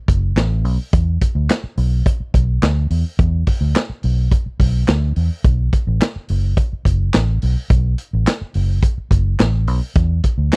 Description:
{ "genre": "funk", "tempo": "106 BPM", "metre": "4/4", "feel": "straight", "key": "unclear", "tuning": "A4 = 440 Hz", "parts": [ { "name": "vintage muted fingered electric bass", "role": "bass", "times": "0.1-10.5 s", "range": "F#1 to E2", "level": "-16 LUFS", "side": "equal", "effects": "none" }, { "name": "vintage drum kit", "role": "drums", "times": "0.1-10.6 s", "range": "handclaps, hi-hat, kick drum, snare drum", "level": "-16 LUFS", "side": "equal", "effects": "none" } ], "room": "little or no reverb", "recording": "dry, close 1970s-style studio recording", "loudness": "-15 LUFS", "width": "side -35 dB against mid", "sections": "0.0-10.6 A section", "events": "none", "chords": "none" }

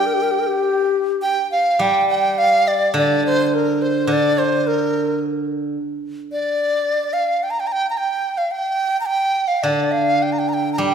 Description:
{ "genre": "chinese traditional, Chinese chamber ensemble", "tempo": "106 BPM", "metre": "4/4", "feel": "rubato", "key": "G yu mode", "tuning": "A4 = 438 Hz", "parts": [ { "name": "breathy large dizi", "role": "melody", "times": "0.0-10.9 s", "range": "Bb4 to Bb5", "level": "-18 LUFS", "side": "right 1 dB", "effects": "none" }, { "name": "breathy bright low xiao", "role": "second line", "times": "0.0-1.2 s", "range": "G4 to Bb4", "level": "-20 LUFS", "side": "left 7 dB", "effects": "none" }, { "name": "steel-string zither", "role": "accompaniment", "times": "0.0-5.8, 9.6-10.9 s", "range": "D3 to D5", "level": "-21 LUFS", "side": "right 1 dB", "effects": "none" } ], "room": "wet recital hall reverb, RT60 1.6 s", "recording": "minimal, uncompressed stereo recording", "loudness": "-17 LUFS", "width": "side -7 dB against mid", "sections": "0.0-1.8 A section; 1.8-10.9 A section", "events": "none", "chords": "none" }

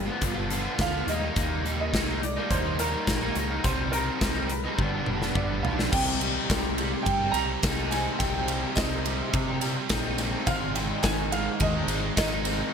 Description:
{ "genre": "indie rock", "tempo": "105 BPM", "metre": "4/4", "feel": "straight", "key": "C minor", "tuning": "A4 = 440 Hz", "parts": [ { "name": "overdriven electric guitar", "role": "riff", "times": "0.0-12.7 s", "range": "G2 to F4", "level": "-32 LUFS", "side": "right 7 dB", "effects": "ensemble chorus, ping-pong delay" }, { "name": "raw garage guitar", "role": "riff", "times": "0.0-12.7 s", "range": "G2 to Eb4", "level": "-32 LUFS", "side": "left 8 dB", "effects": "overdrive, lush chorus" }, { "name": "growling fingered electric bass", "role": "bass", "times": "0.0-12.6 s", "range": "F1 to C3", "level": "-32 LUFS", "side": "equal", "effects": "overdrive" }, { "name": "big rock drum kit", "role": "drums", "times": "0.2-12.6 s", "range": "crash cymbal, hi-hat, kick drum, ride cymbal, snare drum, toms", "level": "-28 LUFS", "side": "equal", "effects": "none" }, { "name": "warm upright piano", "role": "melody", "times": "0.8-12.7 s", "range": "Bb4 to Bb5", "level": "-32 LUFS", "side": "right 2 dB", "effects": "lush chorus, ping-pong delay" }, { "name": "tambourine", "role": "percussion", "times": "5.9-12.6 s", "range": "none", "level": "-42 LUFS", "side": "left 10 dB", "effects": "none" } ], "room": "moderate lush hall reverb, RT60 2.2 s", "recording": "bright 1980s-style digital production", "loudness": "-24 LUFS", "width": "side -7 dB against mid", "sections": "0.0-5.9 A section; 5.9-12.7 B section", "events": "drum fill 4.8-5.9", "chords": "0.0 G7; 1.1 Eb6; 3.6 Cm7; 4.8 G; 5.9 Cm; 10.5 Ab" }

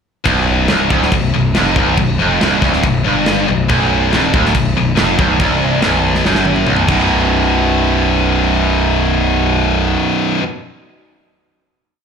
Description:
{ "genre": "heavy metal", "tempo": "140 BPM", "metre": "4/4", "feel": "straight", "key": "B minor", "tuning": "A4 = 445 Hz", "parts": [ { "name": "heavy high-gain guitar", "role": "riff", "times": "0.2-10.4 s", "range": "B1 to B2", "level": "-16 LUFS", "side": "left 12 dB", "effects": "distortion" }, { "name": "distorted electric guitar", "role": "riff", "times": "0.3-10.4 s", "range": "B1 to B2", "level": "-17 LUFS", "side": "right 10 dB", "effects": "overdrive, slapback echo" }, { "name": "fuzz picked electric bass", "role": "bass", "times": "0.3-9.9 s", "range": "B0 to G1", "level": "-18 LUFS", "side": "equal", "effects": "overdrive" }, { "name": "tight metal drum kit", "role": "drums", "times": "0.3-7.0 s", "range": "crash cymbal, kick drum, snare drum, toms", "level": "-19 LUFS", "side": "equal", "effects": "none" } ], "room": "studio reverb", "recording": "live gig heard through the venue's PA, club reverb", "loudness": "-12 LUFS", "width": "side -6 dB against mid", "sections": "0.3-7.1 riff; 7.1-10.5 final hit", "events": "drum fill 6.2-7.1", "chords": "0.3 Bm; 6.9 B5" }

